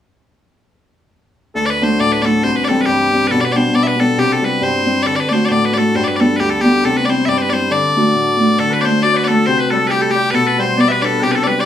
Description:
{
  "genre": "celtic folk, Celtic polka",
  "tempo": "137 BPM",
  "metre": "2/4",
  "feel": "swing 57% on 8ths",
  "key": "D mixolydian",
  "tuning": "A4 = 440 Hz",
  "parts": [
    { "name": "Celtic harp", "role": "accompaniment", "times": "1.5-11.7 s", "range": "C2 to F#4", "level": "-15 LUFS", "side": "equal", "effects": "none" },
    { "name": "loud bright bagpipes", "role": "melody", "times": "1.6-11.6 s", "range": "G4 to E5", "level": "-16 LUFS", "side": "left 2 dB", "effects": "none" },
    { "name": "trumpet with metal mute", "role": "second line", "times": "8.6-11.7 s", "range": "G4 to D5", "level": "-20 LUFS", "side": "left 6 dB", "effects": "none" }
  ],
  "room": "light reverb",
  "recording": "small room ambience",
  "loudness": "-12 LUFS",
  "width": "side -10 dB against mid",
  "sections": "1.6-8.6 A section; 8.6-11.7 A section",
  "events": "none",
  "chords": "1.6 D; 2.4 C; 3.3 G/B; 4.2 C; 5.1 D; 6.0 G; 6.8 C; 7.7 D; 9.5 C; 10.3 G/B",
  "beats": "| 1.56 2.00 | 2.44 2.88 | 3.31 3.75 | 4.19 4.63 | 5.07 5.51 | 5.95 6.39 | 6.83 7.27 | 7.71 8.15 | 8.59 9.03 | 9.47 9.91 | 10.35 10.79 | 11.22"
}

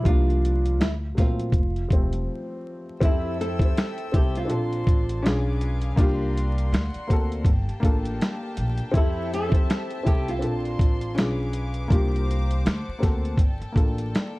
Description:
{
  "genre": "lo-fi hip hop",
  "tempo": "81 BPM",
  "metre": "4/4",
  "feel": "swing 60% on 16ths",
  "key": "F major",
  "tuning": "A4 = 439 Hz",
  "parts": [
    { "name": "flamenco guitar", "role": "melody", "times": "0.0-11.5 s", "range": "E4 to A4", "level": "-30 LUFS", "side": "right 1 dB", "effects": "none" },
    { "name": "warm upright piano", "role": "accompaniment", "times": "0.0-14.4 s", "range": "F3 to C5", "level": "-30 LUFS", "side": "left 2 dB", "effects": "cassette tape" },
    { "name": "upright bass", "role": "bass", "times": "0.0-14.1 s", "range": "E1 to F2", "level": "-26 LUFS", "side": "equal", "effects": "none" },
    { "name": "dusty soul sampler-style drum kit", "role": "drums", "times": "0.1-14.3 s", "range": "hi-hat, kick drum, snare drum", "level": "-22 LUFS", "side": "equal", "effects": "none" },
    { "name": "dark studio string section", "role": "sustained chords", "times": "3.0-14.4 s", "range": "Bb3 to E6", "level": "-38 LUFS", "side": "left 2 dB", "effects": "none" }
  ],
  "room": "light reverb",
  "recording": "dark, warm production, vinyl crackle",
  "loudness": "-21 LUFS",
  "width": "side -21 dB against mid",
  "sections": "0.0-3.0 A section; 3.0-14.4 B section",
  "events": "break 2.3-3.0",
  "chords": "0.1 C9sus4; 0.8 D7b13; 1.5 Fmaj9; 4.5 Bbmaj9; 5.2 Bdim7; 6.0 C9sus4; 6.7 D7b13; 7.5 Gm9; 8.9 Fmaj9; 10.4 Bbmaj9; 11.2 Bdim7; 11.9 C9sus4; 12.6 D7b13; 13.4 Gm9",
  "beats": "| 0.05 0.79 1.53 2.28 | 3.02 3.76 4.50 5.24 | 5.98 6.72 7.46 8.20 | 8.94 9.68 10.42 11.16 | 11.90 12.65 13.39 14.13"
}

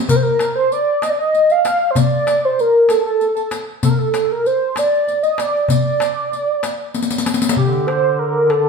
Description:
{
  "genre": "Arabic maqam ensemble",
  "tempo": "64 BPM (dotted quarters)",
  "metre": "6/8",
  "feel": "straight",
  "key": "D maqam kurd",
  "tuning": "A4 = 440 Hz",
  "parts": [
    { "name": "warm velvety synth lead", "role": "melody", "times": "0.1-8.7 s", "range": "G4 to F5", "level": "-15 LUFS", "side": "right 1 dB", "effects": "chorus" },
    { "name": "darbuka", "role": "percussion", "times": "0.1-8.6 s", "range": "none", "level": "-21 LUFS", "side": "left 3 dB", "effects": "none" },
    { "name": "riq", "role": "percussion", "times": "0.1-7.6 s", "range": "none", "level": "-23 LUFS", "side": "left 4 dB", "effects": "none" },
    { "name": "mellow duduk", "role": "drone", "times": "7.6-8.7 s", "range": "D3", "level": "-22 LUFS", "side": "right 2 dB", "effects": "none" }
  ],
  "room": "wet large studio reverb, RT60 1.2 s",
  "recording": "band playing live in one room",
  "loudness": "-14 LUFS",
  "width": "side -5 dB against mid",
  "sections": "0.0-7.6 A section; 7.6-8.7 B section",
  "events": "drum fill 6.9-7.6",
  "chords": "none",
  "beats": "| 0.09 1.03 | 1.96 2.90 | 3.83 4.76 | 5.70 6.63 | 7.57 8.50"
}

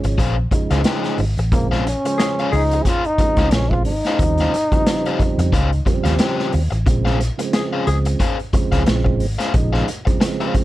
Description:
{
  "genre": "funk",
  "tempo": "90 BPM",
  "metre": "4/4",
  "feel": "swing 56% on 16ths",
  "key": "Bb dorian",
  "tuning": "A4 = 440 Hz",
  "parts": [
    { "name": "crunchy overdriven guitar", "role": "accompaniment", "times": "0.0-10.6 s", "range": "Db4 to G5", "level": "-25 LUFS", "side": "left 5 dB", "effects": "none" },
    { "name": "mellow tonewheel organ", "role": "stabs", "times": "0.0-10.6 s", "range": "Db3 to C5", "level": "-24 LUFS", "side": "right 4 dB", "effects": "chorus vibrato, slow rotary speaker" },
    { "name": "vintage muted fingered electric bass", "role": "bass", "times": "0.0-10.6 s", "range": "Ab1 to F2", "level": "-19 LUFS", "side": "equal", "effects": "none" },
    { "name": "vintage drum kit", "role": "drums", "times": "0.0-10.6 s", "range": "hi-hat, kick drum, snare drum", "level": "-20 LUFS", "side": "equal", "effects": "none" },
    { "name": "breathy trombone", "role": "melody", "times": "1.5-5.8 s", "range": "Bb3 to Ab4", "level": "-21 LUFS", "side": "equal", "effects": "none" },
    { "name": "growling tenor saxophone", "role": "second line", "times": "2.2-2.6, 7.5-8.0 s", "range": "Ab4", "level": "-24 LUFS", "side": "left 5 dB", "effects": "none" }
  ],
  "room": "little or no reverb",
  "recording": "cassette tape",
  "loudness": "-16 LUFS",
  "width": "side -16 dB against mid",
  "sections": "0.0-10.6 A section",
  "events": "none",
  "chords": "0.0 Bbm9; 4.2 Eb13; 6.9 Bbm9",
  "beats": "0.18 0.85 | 1.52 2.19 2.85 3.52 | 4.19 4.86 5.53 6.20 | 6.87 7.54 8.21 8.87 | 9.54 10.21"
}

